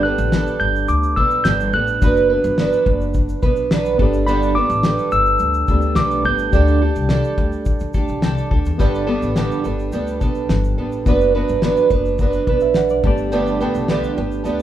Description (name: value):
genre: acoustic pop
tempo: 106 BPM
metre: 4/4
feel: straight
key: G major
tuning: A4 = 440 Hz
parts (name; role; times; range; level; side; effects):
- mellow tine electric piano; melody; 0.0-8.5 s; B5 to G6; -20 LUFS; equal; none
- fingerpicked twelve-string acoustic guitar; accompaniment; 0.0-14.6 s; G2 to B4; -20 LUFS; right 4 dB; none
- reed electric piano; accompaniment; 0.0-14.6 s; A3 to A5; -27 LUFS; left 2 dB; fast tremolo
- upright bass; bass; 0.0-14.6 s; F#1 to D3; -22 LUFS; left 1 dB; none
- cloth-damped thuddy drum kit; drums; 0.2-14.6 s; kick drum, shaker, snare drum; -20 LUFS; left 1 dB; none
room: light reverb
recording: band playing live in one room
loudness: -15 LUFS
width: side -12 dB against mid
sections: 0.0-8.8 A section; 8.8-14.6 B section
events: reed electric piano fill 7.9-8.8, 12.2-13.3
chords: 0.0 Gadd9; 2.0 Bm/F#; 4.0 Gadd9; 6.5 Dsus4; 8.8 Gadd9; 11.1 Bm/F#; 13.0 Gadd9